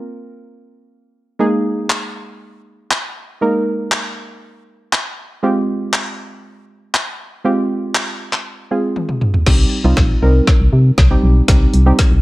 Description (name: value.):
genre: dance-pop.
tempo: 119 BPM.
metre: 4/4.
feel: straight.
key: C minor.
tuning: A4 = 438 Hz.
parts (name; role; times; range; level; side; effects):
soft round pluck; accompaniment; 0.0-12.2 s; G3 to Bb4; -18 LUFS; right 1 dB; chorus, sidechain pumping.
deep house drum kit; drums; 1.9-12.1 s; crash cymbal, handclaps, hi-hat, kick drum, snare drum, toms; -15 LUFS; equal; none.
organ-like FM bass; bass; 9.5-12.2 s; Bb1 to C3; -12 LUFS; equal; sidechain pumping.
room: little or no reverb.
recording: none.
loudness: -13 LUFS.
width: side -19 dB against mid.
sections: 0.0-9.5 A section; 9.5-12.2 B section.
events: drum fill 9.0-9.5, 9.5-12.2; build-up 9.5-12.2.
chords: 0.0 Bbsus2; 1.4 Absus2; 5.4 Fmadd9; 9.5 Cm.